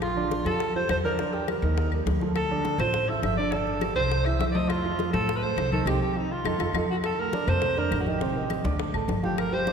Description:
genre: Afro-Cuban jazz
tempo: 205 BPM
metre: 4/4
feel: straight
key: F major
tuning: A4 = 441 Hz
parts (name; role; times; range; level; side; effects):
- breathy alto saxophone; melody; 0.0-9.7 s; Eb4 to E5; -28 LUFS; right 1 dB; none
- warm grand piano; accompaniment; 0.0-9.7 s; C3 to D6; -31 LUFS; right 5 dB; none
- upright bass; bass; 0.0-9.7 s; G1 to A2; -30 LUFS; left 1 dB; none
- bongos; percussion; 0.0-9.7 s; none; -36 LUFS; left 6 dB; none
- claves; percussion; 0.0-9.5 s; none; -40 LUFS; left 7 dB; none
- congas; percussion; 0.0-9.7 s; none; -32 LUFS; left 2 dB; none
room: wet church reverb, RT60 2.8 s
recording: recorded in a church or concert hall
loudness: -24 LUFS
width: side -6 dB against mid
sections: 0.0-7.0 A section; 7.0-9.7 B section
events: band accent 5.9-7.0; drum fill 6.3-7.0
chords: 0.0 Bb6; 1.2 Em7b5; 1.8 Ebadd9; 2.4 Dm7; 3.5 Gsus2; 4.1 Caug; 4.7 F; 5.9 Cm; 6.5 F7; 7.0 Bbmaj9; 8.2 Am7b5; 8.8 D5

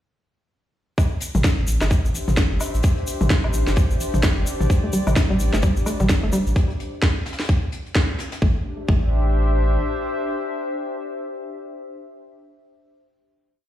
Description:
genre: minimal techno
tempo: 129 BPM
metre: 4/4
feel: swing 60% on 16ths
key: A minor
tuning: A4 = 439 Hz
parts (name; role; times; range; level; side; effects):
- electronic kick drum; drums; 1.0-9.0 s; none; -18 LUFS; equal; overdrive, studio reverb
- jazz brush drum kit; drums; 1.0-8.4 s; hi-hat, snare drum; -36 LUFS; left 2 dB; sidechain pumping on hats, high-pass filter on hats, studio reverb, high-pass filter on snare, high-pass filter on room
- electronic woodblock and toms; percussion; 1.0-6.1 s; none; -27 LUFS; left 1 dB; studio reverb, dub echo
- tube shaker; percussion; 1.0-6.5 s; none; -34 LUFS; left 2 dB; none
- warbly tape-like pad; texture; 1.7-11.8 s; D4 to E5; -28 LUFS; left 2 dB; chorus, built-in reverb, sidechain pumping
- saturated sub bass; bass; 1.3-9.8 s; G1 to A1; -21 LUFS; equal; sidechain pumping
- electronic snare drum; drums; 1.4-8.1 s; none; -26 LUFS; equal; overdrive, studio reverb
- hollow square pluck; riff; 4.8-9.0 s; G3 to A3; -25 LUFS; equal; chorus, sidechain pumping, tape echo
room: little or no reverb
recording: played on a big sound system in a bare room, stone room reverb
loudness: -19 LUFS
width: side -12 dB against mid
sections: 1.0-8.4 groove; 8.4-12.1 final chord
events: fade-in on ambient pad 1.0-6.6; band accent 8.0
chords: 1.0 Am

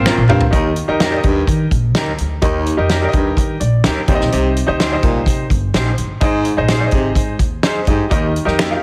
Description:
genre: uptempo 1960s-style soul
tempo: 127 BPM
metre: 4/4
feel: straight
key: Eb major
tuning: A4 = 440 Hz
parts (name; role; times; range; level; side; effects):
- bright baby grand piano; accompaniment; 0.0-8.8 s; Ab2 to G5; -22 LUFS; equal; none
- upright bass; bass; 0.0-8.7 s; G1 to Eb3; -22 LUFS; equal; none
- electric guitar through a small old amp; stabs; 0.1-8.7 s; Bb3 to C5; -25 LUFS; equal; none
- natural country drum kit; drums; 0.1-8.7 s; hi-hat, kick drum, snare drum, toms; -20 LUFS; equal; none
- finger snaps; percussion; 0.1-0.2, 8.6-8.7 s; none; -25 LUFS; equal; none
- breathy baritone saxophone; riff; 0.3-8.3 s; Eb2 to C3; -23 LUFS; equal; none
room: light reverb, small room ambience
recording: heavily compressed radio sound, multiband compression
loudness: -16 LUFS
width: mono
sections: 0.5-8.8 A section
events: drum fill 0.1-0.5; grand piano fill 3.4-4.3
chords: 0.0 Bbsus2; 0.5 Eb; 4.1 Cm; 6.2 Ab; 8.1 Eb

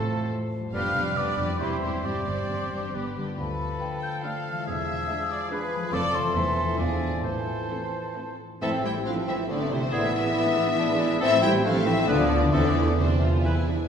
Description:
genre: classical, dramatic, fast romantic movement for symphony orchestra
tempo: 130-144 BPM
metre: 3/4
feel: rubato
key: A minor from 3.4 s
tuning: A4 = 440 Hz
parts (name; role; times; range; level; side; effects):
- warm symphonic violin section; melody; 0.0-13.4 s; E4 to G5; -33 LUFS; left 3 dB; none
- mellow hollow concert flute; second line; 0.0-13.7 s; C5 to G6; -32 LUFS; left 1 dB; none
- warm clarinet; second line; 0.0-13.4 s; A3 to G5; -34 LUFS; left 1 dB; none
- warm oboe; second line; 0.0-13.6 s; G#4 to D5; -36 LUFS; right 1 dB; none
- warm symphonic violin section; second line; 0.0-13.9 s; G#4 to G#5; -36 LUFS; left 2 dB; none
- mellow bassoon; accompaniment; 0.0-13.7 s; E3 to D4; -34 LUFS; right 2 dB; none
- rich symphonic viola section; accompaniment; 0.0-13.9 s; D3 to F4; -34 LUFS; right 2 dB; none
- mellow French horn section; sustained chords; 0.0-13.5 s; E3 to G4; -30 LUFS; left 4 dB; none
- concert harp; arpeggios; 0.0-13.9 s; E2 to D5; -33 LUFS; left 2 dB; none
- warm symphonic cello section; bass; 0.0-13.4 s; D2 to G3; -32 LUFS; right 2 dB; none
- warm symphonic double bass section; bass; 0.0-13.7 s; E1 to E2; -30 LUFS; right 2 dB; none
room: wet recital hall reverb, RT60 1.6 s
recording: recorded in a church or concert hall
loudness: -23 LUFS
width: side -7 dB against mid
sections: 0.0-8.6 A section; 8.6-13.9 B section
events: none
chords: 0.0 F; 0.7 G7/F; 1.6 C/E; 2.0 Gsus4; 3.0 G; 3.4 Bm7b5/D; 4.7 E7b9; 5.9 F; 6.4 Am/E; 6.8 E7b9; 7.2 Am; 9.9 E7/A; 11.2 Am; 12.1 Bdim/D; 12.5 Am/E

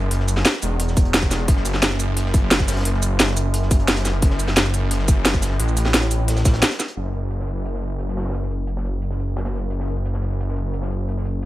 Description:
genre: dark technical drum and bass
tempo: 175 BPM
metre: 4/4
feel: straight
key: unclear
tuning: A4 = 443 Hz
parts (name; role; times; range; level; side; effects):
- wide detuned saw bass; bass; 0.0-11.5 s; E1 to A1; -21 LUFS; equal; chorus, tube saturation
- crunchy breakbeat drum kit; drums; 0.1-11.5 s; hi-hat, snare drum; -35 LUFS; equal; high-pass filter on hats, low-pass filter on hats, studio ambience, high-pass filter on snare, low-pass filter on snare, high-pass filter on room, low-pass filter on room
- drum and bass drum kit; drums; 0.1-6.9 s; hi-hat, shaker, snare drum; -19 LUFS; equal; studio ambience
- electronic kick drum; drums; 1.0-6.5 s; none; -18 LUFS; equal; studio ambience
room: small room reverb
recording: none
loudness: -18 LUFS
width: side -16 dB against mid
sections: 0.0-7.0 A section; 7.0-11.5 B section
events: none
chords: none

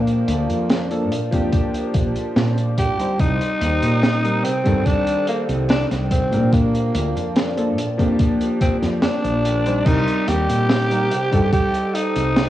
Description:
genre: vaporwave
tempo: 72 BPM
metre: 4/4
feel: straight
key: unclear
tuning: A4 = 438 Hz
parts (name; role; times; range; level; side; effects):
- growling tenor saxophone; melody; 0.0-12.5 s; Bb3 to G4; -23 LUFS; equal; tape echo
- warm electric grand piano; accompaniment; 0.0-12.5 s; Eb3 to C5; -23 LUFS; left 1 dB; lush chorus, cassette tape, tape echo
- warbly tape-like pad; sustained chords; 0.2-12.5 s; F4 to A5; -32 LUFS; equal; chorus, built-in reverb, cassette tape
- woody fretless electric bass; bass; 0.0-12.5 s; Bb1 to C3; -22 LUFS; equal; transformer saturation
- crunchy breakbeat drum kit; drums; 0.1-12.5 s; crash cymbal, hi-hat, snare drum; -24 LUFS; equal; none
- electronic kick drum; drums; 1.3-11.7 s; none; -21 LUFS; equal; overdrive
room: light reverb, studio reverb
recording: home recording on cassette, studio ambience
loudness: -17 LUFS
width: side -13 dB against mid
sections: 0.0-9.9 A section; 9.9-12.5 B section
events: kick drops out 9.0-9.9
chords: 0.0 Bbmaj7; 3.2 Cm7; 6.5 Bbmaj7; 9.9 Cm7

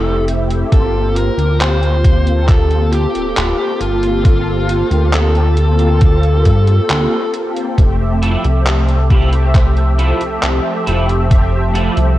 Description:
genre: vaporwave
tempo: 68 BPM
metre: 4/4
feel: straight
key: G dorian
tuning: A4 = 440 Hz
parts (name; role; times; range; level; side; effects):
- bluesy overdriven lead guitar; melody; 0.0-7.3 s; F4 to C5; -20 LUFS; left 1 dB; distortion, vintage 12-bit sampler grit, tape echo
- mellow synth brass; accompaniment; 0.0-12.2 s; A3 to E5; -19 LUFS; equal; ensemble chorus, analog delay
- chorused synth bass; bass; 0.0-12.2 s; D1 to G2; -14 LUFS; equal; none
- detuned 8-bit digital drum machine; drums; 0.3-12.1 s; handclaps, hi-hat; -22 LUFS; equal; studio reverb, gated reverb
- electronic kick drum; drums; 0.7-11.5 s; none; -11 LUFS; equal; studio reverb
- warbly tape-like pad; sustained chords; 8.2-12.2 s; F3 to E6; -24 LUFS; right 2 dB; chorus, built-in reverb
- electric guitar at the edge of break-up; riff; 8.2-12.0 s; E4 to A4; -24 LUFS; right 2 dB; ensemble chorus, vintage 12-bit sampler grit, analog delay
room: digital ambience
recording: cassette tape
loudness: -11 LUFS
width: side -15 dB against mid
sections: 0.0-12.2 A section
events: none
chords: 0.0 Fmaj7; 0.7 Gm11; 7.8 Fmaj7

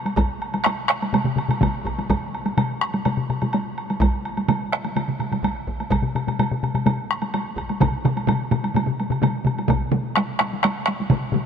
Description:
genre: japanese traditional, taiko drum ensemble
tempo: 126 BPM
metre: 4/4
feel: straight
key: none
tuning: none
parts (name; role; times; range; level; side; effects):
- taiko ensemble; percussion; 0.1-11.5 s; none; -26 LUFS; right 1 dB; none
- woodblock; percussion; 0.1-11.2 s; none; -29 LUFS; right 2 dB; none
- taiko ensemble; percussion; 0.2-11.2 s; none; -26 LUFS; right 1 dB; none
- solo taiko drums; percussion; 0.6-11.4 s; none; -25 LUFS; left 5 dB; none
- taiko ensemble; percussion; 0.6-11.4 s; none; -25 LUFS; right 4 dB; none
room: moderate huge ambient reverb, RT60 7.9 s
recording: none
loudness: -20 LUFS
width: side -7 dB against mid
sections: 0.0-9.7 A section; 9.7-11.5 B section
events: speeding up 0.0-11.5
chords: none

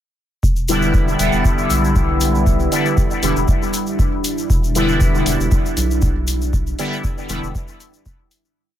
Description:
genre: dub techno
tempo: 118 BPM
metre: 4/4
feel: swing 54% on 16ths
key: E minor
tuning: A4 = 440 Hz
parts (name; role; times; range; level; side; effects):
- deep dark ambient pad; sustained chords; 2.3-8.5 s; G3 to E4; -26 LUFS; right 2 dB; chorus, built-in reverb, sidechain pumping
- round analog bass; bass; 0.4-7.5 s; E1 to B1; -21 LUFS; equal; sidechain pumping
- electronic kick drum; drums; 0.4-8.2 s; none; -18 LUFS; equal; none
- tube shaker; percussion; 0.4-8.5 s; none; -29 LUFS; left 5 dB; none
- resonant sweep polysynth; stabs; 0.7-7.4 s; D3 to E4; -19 LUFS; equal; chorus, phaser, sidechain pumping, dub echo
- electronic hi-hat; drums; 0.7-8.4 s; none; -27 LUFS; left 1 dB; none
room: light reverb, digital ambience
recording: none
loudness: -15 LUFS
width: side -11 dB against mid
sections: 0.4-8.6 groove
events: fade-out 5.9-8.6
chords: 0.4 Em7

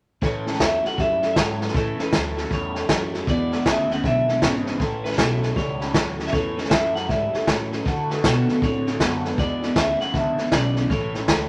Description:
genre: rockabilly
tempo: 157 BPM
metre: 4/4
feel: swing 64% on 8ths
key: A major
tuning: A4 = 441 Hz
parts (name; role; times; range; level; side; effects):
- picked steel-string acoustic guitar; accompaniment; 0.2-11.5 s; E2 to F#4; -32 LUFS; equal; none
- electric guitar through a small old amp; riff; 0.2-11.5 s; E2 to C4; -30 LUFS; equal; phaser
- upright bass; bass; 0.2-11.5 s; G#1 to D3; -31 LUFS; equal; none
- vintage drum kit; drums; 0.2-11.4 s; hi-hat, kick drum, snare drum; -26 LUFS; equal; none
- electric guitar through a small old amp; melody; 0.3-11.5 s; A4 to F#5; -29 LUFS; equal; none
room: light reverb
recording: none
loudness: -22 LUFS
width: mono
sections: 0.2-11.5 A section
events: none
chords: 0.2 A; 3.3 E7; 4.8 A; 7.9 D; 9.4 E7; 10.9 A

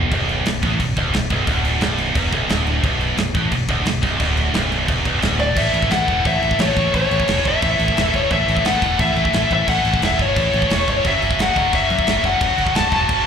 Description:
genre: heavy metal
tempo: 176 BPM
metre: 4/4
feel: straight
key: unclear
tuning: A4 = 440 Hz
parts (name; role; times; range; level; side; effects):
- heavy high-gain guitar; riff; 0.0-13.3 s; B1 to A4; -24 LUFS; left 13 dB; distortion
- heavy high-gain guitar; riff; 0.0-13.3 s; B1 to A3; -22 LUFS; right 12 dB; distortion
- growling fingered electric bass; bass; 0.0-13.2 s; B0 to F#2; -23 LUFS; equal; overdrive
- modern studio drum kit; drums; 0.1-13.2 s; crash cymbal, kick drum, snare drum; -22 LUFS; equal; none
- high-gain lead guitar; melody; 5.4-13.3 s; C#5 to A5; -19 LUFS; left 2 dB; distortion, slapback echo, digital delay
room: small room reverb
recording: live gig heard through the venue's PA, club reverb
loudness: -16 LUFS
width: side -7 dB against mid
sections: 0.0-5.6 A section; 5.6-13.3 B section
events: none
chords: 0.0 Bm; 5.6 A; 11.0 F#m

